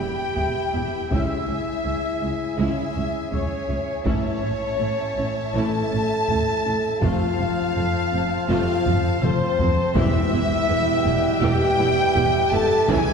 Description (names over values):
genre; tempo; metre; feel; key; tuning
cinematic, epic orchestral film score; 82 BPM; 4/4; straight; E dorian; A4 = 440 Hz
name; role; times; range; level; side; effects
warm symphonic violin section; melody; 0.0-13.1 s; C5 to A5; -29 LUFS; left 5 dB; none
silver concert flute; second line; 0.0-13.1 s; C5 to A5; -32 LUFS; left 2 dB; none
warm symphonic violin section; second line; 0.0-13.1 s; E5 to B5; -35 LUFS; left 1 dB; none
warm symphonic viola section; accompaniment; 0.0-13.1 s; E3 to G4; -32 LUFS; equal; none
clear woodwind section; sustained chords; 0.0-13.1 s; B3 to G5; -35 LUFS; equal; none
dark French horn section; sustained chords; 0.0-13.1 s; C4 to A4; -26 LUFS; equal; none
warm trumpet section; stabs; 0.0-13.1 s; C5 to A5; -30 LUFS; right 2 dB; none
warm symphonic cello section; bass; 0.0-13.0 s; C#2 to A2; -28 LUFS; right 1 dB; none
warm symphonic double bass section; bass; 0.0-13.0 s; E1 to C#2; -28 LUFS; right 2 dB; none
taiko ensemble; drums; 0.4-13.1 s; none; -28 LUFS; equal; none
bright trombone section; sustained chords; 1.1-13.1 s; B2 to A3; -34 LUFS; right 3 dB; none
timpani; percussion; 10.0-11.0 s; E2; -29 LUFS; equal; none
room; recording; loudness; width
wet concert hall reverb, RT60 1.9 s; heard from further back in the room; -19 LUFS; side -6 dB against mid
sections
0.0-13.1 A section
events
drum fill 8.9-10.0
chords
0.0 Em; 1.1 C#m; 4.1 A; 7.0 F; 10.0 Em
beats
0.37 | 1.11 1.85 2.59 3.33 | 4.06 4.80 5.55 6.29 | 7.02 7.76 8.49 9.23 | 9.96 10.70 11.43 12.16 | 12.89